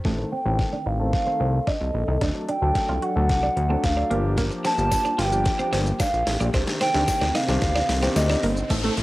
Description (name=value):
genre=dance-pop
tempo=111 BPM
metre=4/4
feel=straight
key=unclear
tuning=A4 = 440 Hz
part: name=warm concert grand piano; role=accompaniment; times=0.0-8.9 s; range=Eb3 to A4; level=-30 LUFS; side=left 2 dB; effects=sidechain pumping, low-pass filter, cassette tape
part: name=smooth R&B drum kit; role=drums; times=0.0-9.0 s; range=crash cymbal, hi-hat, kick drum, shaker, snare drum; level=-26 LUFS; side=equal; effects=cassette tape
part: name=warm analog pad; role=sustained chords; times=0.1-9.0 s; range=C3 to Eb5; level=-33 LUFS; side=left 1 dB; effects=none
part: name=twelve-string electric guitar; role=riff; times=0.1-9.0 s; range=A3 to F#4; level=-30 LUFS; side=right 2 dB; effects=analog chorus, low-pass filter, cassette tape
part: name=fat analog bass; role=bass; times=0.1-9.0 s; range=G1 to D2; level=-24 LUFS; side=equal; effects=sidechain pumping
part: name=riser and downlifter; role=sound effects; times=2.5-9.0 s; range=none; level=-37 LUFS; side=equal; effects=none
part: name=hollow clarinet-like synth lead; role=melody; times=0.3-8.7 s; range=Eb5 to A5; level=-25 LUFS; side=right 1 dB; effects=chorus, low-pass filter, cassette tape
part: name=tambourine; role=percussion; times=4.9-8.3 s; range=none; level=-36 LUFS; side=left 6 dB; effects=none
part: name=wide unison pluck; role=melody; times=8.8-8.9 s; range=A3 to A4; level=-24 LUFS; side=right 2 dB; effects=sidechain pumping, cassette tape
room=light reverb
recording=home recording on cassette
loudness=-20 LUFS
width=side -18 dB against mid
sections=0.1-8.7 A section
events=build-up 0.1-8.7; drum fill 0.1-8.7; filter sweep 0.1-8.7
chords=0.1 Adim; 2.2 D; 4.1 Gm7; 6.5 Cmadd9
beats=| 0.05 0.59 1.14 1.68 | 2.22 2.76 3.30 3.84 | 4.38 4.92 5.46 6.00 | 6.54 7.08 7.62 8.16 | 8.70